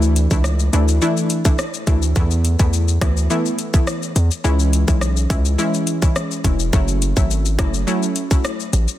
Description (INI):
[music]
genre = dancehall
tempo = 105 BPM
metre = 4/4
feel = straight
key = F# minor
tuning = A4 = 440 Hz
[part]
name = analog pluck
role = accompaniment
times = 0.0-8.5 s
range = E3 to E4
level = -21 LUFS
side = equal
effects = chorus
[part]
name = hard-hitting 808-style bass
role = bass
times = 0.0-8.9 s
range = E1 to E2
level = -17 LUFS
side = equal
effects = none
[part]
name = island pop drum kit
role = drums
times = 0.0-9.0 s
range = hi-hat, kick drum, rim click, shaker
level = -20 LUFS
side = equal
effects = soft clipping on snare
[sound]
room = light reverb, digital ambience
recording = dense, heavily limited modern master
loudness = -16 LUFS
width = side -13 dB against mid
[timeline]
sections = 0.0-9.0 A section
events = none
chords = 0.0 Dsus2; 2.2 Esus4; 4.4 C#m; 6.7 F#m7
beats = 0.45 1.02 1.59 | 2.16 2.73 3.30 3.87 | 4.45 5.02 5.59 6.16 | 6.73 7.30 7.87 8.45